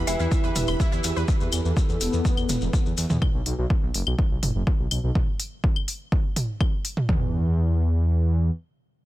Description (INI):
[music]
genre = melodic techno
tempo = 124 BPM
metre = 4/4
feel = straight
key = unclear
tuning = A4 = 440 Hz
[part]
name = dark analog pad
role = sustained chords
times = 0.0-3.2 s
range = E4 to B4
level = -33 LUFS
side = right 1 dB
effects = chorus, sidechain pumping
[part]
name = dark detuned saw bass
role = bass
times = 0.0-8.5 s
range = E1 to E2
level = -24 LUFS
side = equal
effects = sidechain pumping
[part]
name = mellow synth brass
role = melody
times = 0.1-3.1 s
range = B3 to E4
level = -33 LUFS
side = left 1 dB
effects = chorus, sidechain pumping, ping-pong delay
[part]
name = dark detuned synth bell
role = second line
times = 0.1-0.9 s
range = E5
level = -36 LUFS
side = right 1 dB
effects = chorus, sidechain pumping, dub echo
[part]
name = wide unison pluck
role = arpeggios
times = 0.1-1.2 s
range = E4 to E6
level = -34 LUFS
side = right 1 dB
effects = sidechain pumping, dub echo
[part]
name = deep house drum kit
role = drums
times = 0.1-7.1 s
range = claves, hi-hat, toms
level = -28 LUFS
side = equal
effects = none
[part]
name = shekere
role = percussion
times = 0.1-3.2 s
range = none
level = -36 LUFS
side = left 5 dB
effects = none
[part]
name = deep house drum kit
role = drums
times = 0.3-7.2 s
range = kick drum, toms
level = -23 LUFS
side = equal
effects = none
[sound]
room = digital ambience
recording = dense, heavily limited modern master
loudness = -21 LUFS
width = side -16 dB against mid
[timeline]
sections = 0.0-7.1 A section; 7.1-9.1 B section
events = drop 0.0-7.1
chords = 0.0 Em; 3.2 B5; 7.1 N.C.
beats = 0.32 0.80 | 1.28 1.77 2.25 2.73 | 3.22 3.70 4.19 4.67 | 5.15 5.64 6.12 6.61 | 7.09 7.57 8.06